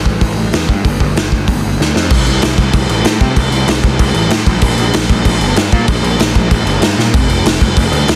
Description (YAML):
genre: punk rock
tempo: 191 BPM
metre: 4/4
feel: straight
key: unclear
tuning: A4 = 440 Hz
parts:
  - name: fuzz picked electric bass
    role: bass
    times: 0.0-8.2 s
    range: F1 to C3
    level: -17 LUFS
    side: equal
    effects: overdrive
  - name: raw garage drum kit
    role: drums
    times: 0.1-8.2 s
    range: crash cymbal, hi-hat, kick drum, snare drum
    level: -14 LUFS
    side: equal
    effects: none
room: little or no reverb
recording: dense, heavily limited modern master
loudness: -13 LUFS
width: mono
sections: 0.0-2.1 A section; 2.1-8.2 B section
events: drum fill 1.8-2.1, 7.0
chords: none